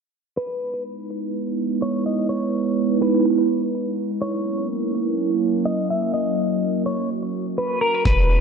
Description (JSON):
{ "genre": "hip hop, atmospheric cloud-rap", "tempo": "125 BPM", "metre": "4/4", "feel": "half-time", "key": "E lydian", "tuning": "A4 = 440 Hz", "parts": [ { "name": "clean electric guitar", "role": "melody", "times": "0.4-8.4 s", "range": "A#4 to E5", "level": "-26 LUFS", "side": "left 1 dB", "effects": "ping-pong delay" }, { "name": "warbly tape-like pad", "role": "sustained chords", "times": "1.0-8.4 s", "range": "E3 to B4", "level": "-21 LUFS", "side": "right 2 dB", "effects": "chorus, built-in reverb, phaser, sidechain pumping" }, { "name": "clean 808-style bass", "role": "bass", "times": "8.1-8.4 s", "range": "E1", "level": "-17 LUFS", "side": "equal", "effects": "none" }, { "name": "lo-fi sampler-style drum kit", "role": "drums", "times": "8.1-8.2 s", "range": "hi-hat, kick drum", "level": "-20 LUFS", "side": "equal", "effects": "none" } ], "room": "moderate digital room reverb, RT60 1.3 s, digital ambience", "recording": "low-pass filter", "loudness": "-20 LUFS", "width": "side -6 dB against mid", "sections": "0.4-8.1 A section", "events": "filter sweep 0.4-8.1", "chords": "0.4 Emaj7; 4.2 F#7" }